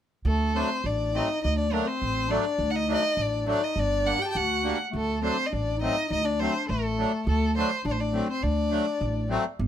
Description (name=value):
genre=klezmer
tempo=103 BPM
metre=2/4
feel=straight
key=D phrygian dominant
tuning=A4 = 440 Hz
part: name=upright bass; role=bass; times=0.2-9.7 s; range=G1 to D2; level=-28 LUFS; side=right 1 dB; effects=none
part: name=rich violin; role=melody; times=0.3-9.3 s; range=A4 to A5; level=-28 LUFS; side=left 1 dB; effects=none
part: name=dark clarinet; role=second line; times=0.3-9.3 s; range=A3 to G4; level=-32 LUFS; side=left 4 dB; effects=none
part: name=accordion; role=accompaniment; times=0.5-9.4 s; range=F#3 to D4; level=-29 LUFS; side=equal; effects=none
room=light reverb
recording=close, detailed microphones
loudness=-24 LUFS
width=side -10 dB against mid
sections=0.3-9.6 A section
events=none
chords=0.3 D; 3.8 Gm; 4.9 D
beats=| 0.26 0.84 | 1.43 2.01 | 2.60 3.18 | 3.76 4.34 | 4.93 5.51 | 6.09 6.68 | 7.26 7.84 | 8.43 9.01 | 9.59